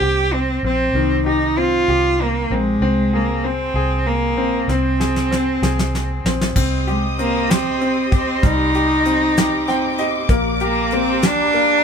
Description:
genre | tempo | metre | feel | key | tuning
six-eight pop ballad | 64 BPM (dotted quarters) | 6/8 | straight | C minor | A4 = 441 Hz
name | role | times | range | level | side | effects
rich cello | melody | 0.0-11.8 s | Ab3 to G4 | -18 LUFS | right 1 dB | none
bright concert grand piano | accompaniment | 0.0-11.8 s | Eb3 to G5 | -22 LUFS | left 3 dB | none
vintage muted fingered electric bass | bass | 0.0-11.8 s | Bb1 to C2 | -23 LUFS | right 1 dB | none
soft brush drum kit | drums | 4.7-11.7 s | crash cymbal, hi-hat, kick drum, snare drum | -20 LUFS | equal | none
warm studio string section | sustained chords | 6.6-11.8 s | G4 to Eb6 | -25 LUFS | left 1 dB | none
room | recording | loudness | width
moderate studio ambience, RT60 0.5 s | band playing live in one room | -16 LUFS | side -6 dB against mid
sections
0.0-6.6 A section; 6.6-11.8 B section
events
drum fill 4.7-6.6; grand piano fill 9.4-10.3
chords
0.0 Cm; 2.8 Ab; 6.6 Cm; 10.3 Gm/Bb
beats
0.01 | 0.94 1.88 | 2.81 3.75 | 4.68 5.62 | 6.56 7.50 | 8.43 9.36 | 10.29 11.22

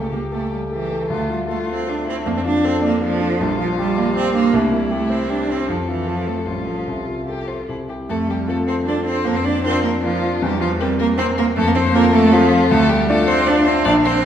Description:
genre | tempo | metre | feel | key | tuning
quick classical-period movement for piano trio | 156 BPM | 3/4 | rubato | D minor, F major from 3.4 s | A4 = 444 Hz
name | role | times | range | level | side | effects
rich violin | melody | 0.0-14.1 s | D4 to D5 | -26 LUFS | left 5 dB | none
clear cello | second line | 0.0-14.2 s | C3 to D4 | -19 LUFS | right 3 dB | none
warm grand piano | accompaniment | 0.0-14.2 s | A1 to D5 | -20 LUFS | left 2 dB | none
room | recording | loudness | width
wet recital hall reverb, RT60 1.5 s | heard from further back in the room | -16 LUFS | side -9 dB against mid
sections
0.0-8.1 A section; 8.1-14.2 B section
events
none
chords
0.0 A7/C#; 1.1 Dm; 2.3 Dm/F; 3.4 Gm7/Bb; 4.5 C; 5.7 F; 6.5 F/A; 6.9 F/C; 7.7 C; 8.1 F; 9.3 Bb/F; 10.4 C7/E; 11.6 F; 12.7 Dm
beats
0.32 0.71 | 1.09 1.48 1.87 | 2.25 2.63 3.02 | 3.40 3.78 4.16 | 4.54 4.92 5.31 | 5.69 6.08 6.47 | 6.88 7.28 7.69 | 8.09 8.48 8.87 | 9.27 9.65 10.04 | 10.42 10.80 11.18 | 11.56 11.95 12.33 | 12.71 13.09 13.47 | 13.86 14.24

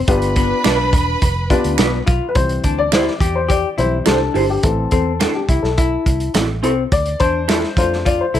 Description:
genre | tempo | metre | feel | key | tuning
uptempo 1960s-style soul | 105 BPM | 4/4 | straight | C major | A4 = 439 Hz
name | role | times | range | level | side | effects
warm studio violin section | second line | 0.1-2.0 s | B4 to B5 | -22 LUFS | right 2 dB | none
dark upright piano | accompaniment | 0.1-8.4 s | E3 to D5 | -20 LUFS | left 4 dB | none
vintage muted fingered electric bass | bass | 0.1-8.4 s | E1 to F2 | -22 LUFS | right 1 dB | none
crunchy breakbeat drum kit | drums | 0.1-8.4 s | hi-hat, kick drum, snare drum | -18 LUFS | right 1 dB | none
vintage hollow-body jazz guitar | riff | 0.4-8.4 s | B3 to G4 | -22 LUFS | left 6 dB | none
electric guitar through a small old amp | stabs | 0.6-7.6 s | C4 to C5 | -21 LUFS | right 7 dB | phaser
finger snap | percussion | 0.6-7.6 s | none | -26 LUFS | right 16 dB | none
room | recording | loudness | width
studio reverb | none | -14 LUFS | side -11 dB against mid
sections
0.0-2.4 A section; 2.4-8.4 B section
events
upright piano solo 2.4-8.4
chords
0.1 G7; 2.4 C; 4.6 Am; 6.9 Dm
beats
| 0.08 0.65 1.22 1.79 | 2.36 2.93 3.50 4.07 | 4.64 5.21 5.78 6.35 | 6.92 7.49 8.06

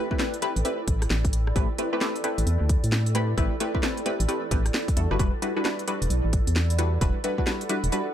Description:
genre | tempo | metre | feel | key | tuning
UK garage, two-step garage | 132 BPM | 4/4 | swing 63% on 16ths | A dorian | A4 = 441 Hz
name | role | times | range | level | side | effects
punchy chord stab | stabs | 0.0-8.1 s | G3 to B4 | -28 LUFS | left 1 dB | chorus, phaser, tape echo
granular cloud pad | texture | 0.0-8.1 s | E4 to G5 | -34 LUFS | right 1 dB | built-in reverb, sidechain pumping
electronic kick drum | drums | 0.1-7.5 s | none | -26 LUFS | equal | none
house drum kit | drums | 0.2-8.0 s | hi-hat, rim click, snare drum | -30 LUFS | equal | none
organ-like FM bass | bass | 0.6-7.9 s | E1 to A2 | -24 LUFS | equal | tube saturation
room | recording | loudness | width
little or no reverb | none | -22 LUFS | side -10 dB against mid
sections
0.0-8.1 A section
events
none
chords
0.0 Am7; 5.0 Em9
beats
0.19 0.65 1.10 | 1.56 2.01 2.47 2.92 | 3.38 3.83 4.29 4.74 | 5.19 5.65 6.10 6.56 | 7.01 7.47 7.92

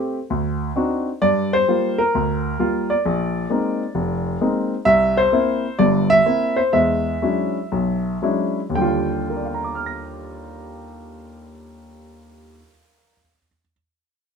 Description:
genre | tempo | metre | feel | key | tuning
solo jazz | 112-132 BPM | 4/4 | swing 67% on 8ths | Eb major | A4 = 440 Hz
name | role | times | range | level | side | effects
warm baby grand piano | solo | 0.0-13.7 s | F1 to Bb6 | -18 LUFS | equal | none
room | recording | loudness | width
moderate small room ambience, RT60 0.5 s | minimal, uncompressed stereo recording | -18 LUFS | side -6 dB against mid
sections
0.0-1.2 A section; 1.2-8.7 B section; 8.7-13.0 C section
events
slowing down 4.9-8.7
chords
0.3 D7b9; 1.2 Gm7; 3.0 Bb9sus4; 4.9 C7; 6.7 E13; 8.7 Ebmaj9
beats
0.30 0.76 | 1.22 1.67 2.13 2.59 | 3.04 3.50 3.96 4.41 | 4.87 5.32 5.78 6.25 | 6.73 7.21 7.71 8.22 | 8.74 9.28 9.81 10.35 | 10.88 11.42 11.96 12.49

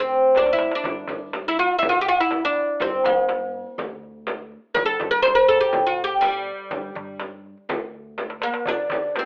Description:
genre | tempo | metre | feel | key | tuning
Arabic maqam ensemble | 123 BPM | 4/4 | straight | G maqam rast | A4 = 440 Hz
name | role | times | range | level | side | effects
oud | melody | 0.0-9.3 s | G3 to C5 | -22 LUFS | equal | none
upright bass | bass | 0.0-8.4 s | D2 to Bb2+50c | -45 LUFS | equal | none
darbuka | percussion | 0.1-9.3 s | none | -36 LUFS | equal | none
frame drum | percussion | 0.4-9.3 s | none | -32 LUFS | equal | none
breathy low ney | second line | 8.4-9.3 s | B4-48c to Eb5 | -29 LUFS | equal | none
room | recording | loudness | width
moderate studio reverb, RT60 0.6 s | telephone sound | -22 LUFS | mono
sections
0.0-8.7 A section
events
drum fill 0.4-0.9, 8.2-8.7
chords
none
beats
0.36 | 0.85 1.34 1.83 2.32 | 2.81 3.29 3.78 4.27 | 4.76 5.25 5.73 6.22 | 6.71 7.20 7.68 8.17 | 8.66 9.15

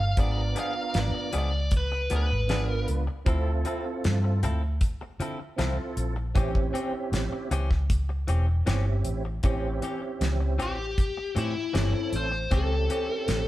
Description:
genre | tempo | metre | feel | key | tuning
straight-eighth soul blues | 78 BPM | 4/4 | straight | unclear | A4 = 441 Hz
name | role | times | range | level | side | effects
biting lead guitar | melody | 0.0-2.9, 10.6-13.5 s | E4 to F5 | -30 LUFS | left 2 dB | overdrive
direct-recorded clean electric guitar | stabs | 0.0-13.3 s | E3 to A4 | -35 LUFS | left 2 dB | none
vintage muted fingered electric bass | bass | 0.0-13.5 s | E1 to D3 | -27 LUFS | equal | none
tonewheel organ | accompaniment | 0.2-13.5 s | B3 to B4 | -34 LUFS | right 3 dB | slow rotary speaker, chorus vibrato
damped 70s drum kit | drums | 0.2-13.5 s | hi-hat, kick drum, snare drum | -28 LUFS | equal | none
room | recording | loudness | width
moderate stone room reverb, RT60 1.2 s | band playing live in one room | -25 LUFS | side -15 dB against mid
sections
0.0-13.5 A section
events
none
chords
0.2 G#dim7; 3.3 Dm9; 6.4 A7#9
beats
| 0.17 0.95 1.72 2.49 | 3.26 4.04 4.81 5.58 | 6.35 7.12 7.89 8.66 | 9.44 10.21 10.97 11.74 | 12.51 13.28

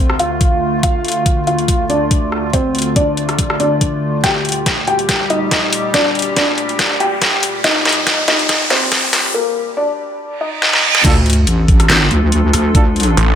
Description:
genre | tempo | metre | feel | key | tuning
heavy wobble dubstep | 141 BPM | 4/4 | swing 54% on 16ths, half-time | D phrygian | A4 = 440 Hz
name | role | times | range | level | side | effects
felt-muted upright piano | melody | 0.0-11.0 s | Bb3 to G5 | -18 LUFS | left 1 dB | dub echo
evolving wavetable pad | sustained chords | 0.0-13.4 s | D2 to A4 | -22 LUFS | equal | chorus, built-in reverb, sidechain pumping
dubstep drum kit | drums | 0.1-13.3 s | crash cymbal, handclaps, hi-hat, rim click, snare drum | -16 LUFS | equal | high-pass filter on hats, high-pass filter on snare, high-pass filter on cymbals, high-pass filter on room
electronic kick drum | drums | 0.4-12.8 s | none | -15 LUFS | equal | none
riser, reverse cymbal and sub drop | sound effects | 5.9-12.7 s | none | -20 LUFS | right 2 dB | none
mellow brass ensemble | stabs | 11.0-12.8 s | D4 to A4 | -23 LUFS | right 4 dB | dub echo
wobble bass | bass | 11.0-13.2 s | A1 to D2 | -13 LUFS | equal | chorus, overdrive
snarling distorted saw bass | bass | 13.2-13.4 s | A1 | -11 LUFS | equal | distortion, overdrive
room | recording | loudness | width
moderate plate reverb, RT60 1.1 s | high-pass filter | -12 LUFS | side -9 dB against mid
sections
0.0-11.0 A section; 11.0-13.4 B section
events
build-up 0.0-11.0; filter sweep 0.0-11.0; drum fill 4.2-9.3, 10.6-11.0; riser 5.9-9.3; reverse cymbal 10.5-11.0; drop 11.0-13.4; impact 11.0-12.7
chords
0.0 Dm; 4.2 Eb/D; 11.0 Dm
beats
0.41 | 0.83 1.26 1.69 2.11 | 2.54 2.96 3.39 3.81 | 4.24 4.66 5.09 5.51 | 5.94 6.37 6.79 7.22 | 7.64 8.07 8.49 8.92 | 9.34 9.77 10.20 10.62 | 11.05 11.47 11.90 12.32 | 12.75 13.17

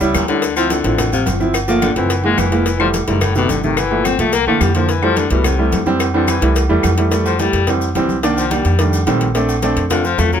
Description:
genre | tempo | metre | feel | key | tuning
Afro-Cuban jazz | 215 BPM | 4/4 | straight | F major | A4 = 441 Hz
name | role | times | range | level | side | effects
warm upright piano | accompaniment | 0.0-10.4 s | Bb2 to F4 | -17 LUFS | right 2 dB | none
upright bass | bass | 0.0-10.4 s | F1 to F2 | -19 LUFS | equal | none
agogo bells and timbales | percussion | 0.0-10.3 s | none | -26 LUFS | right 3 dB | none
congas | percussion | 0.0-10.4 s | none | -27 LUFS | left 4 dB | none
maracas | percussion | 0.0-10.4 s | none | -30 LUFS | left 5 dB | none
warm baritone saxophone | second line | 0.1-10.4 s | Ab2 to C4 | -19 LUFS | left 8 dB | none
claves | percussion | 0.1-7.0 s | none | -24 LUFS | left 8 dB | none
cowbell | percussion | 0.1-10.3 s | none | -26 LUFS | left 6 dB | none
room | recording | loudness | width
little or no reverb | close, detailed microphones | -13 LUFS | side -8 dB against mid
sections
0.0-7.1 A section; 7.1-10.4 A section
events
baritone saxophone solo 0.0-10.4; drum fill 1.8-2.7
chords
0.4 Dm7; 1.5 Gm7; 2.1 Gb9; 2.7 Fmaj7; 3.2 F#dim7; 3.8 Gm7; 4.3 C7; 4.9 Fmaj9; 8.2 Cm9; 8.8 F13; 9.3 Bbmaj9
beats
0.15 | 0.42 0.70 0.98 1.26 | 1.54 1.82 2.10 2.38 | 2.66 2.94 3.21 3.49 | 3.77 4.05 4.33 4.61 | 4.89 5.17 5.45 5.72 | 6.00 6.28 6.56 6.84 | 7.12 7.40 7.67 7.95 | 8.23 8.51 8.79 9.07 | 9.35 9.63 9.91 10.19

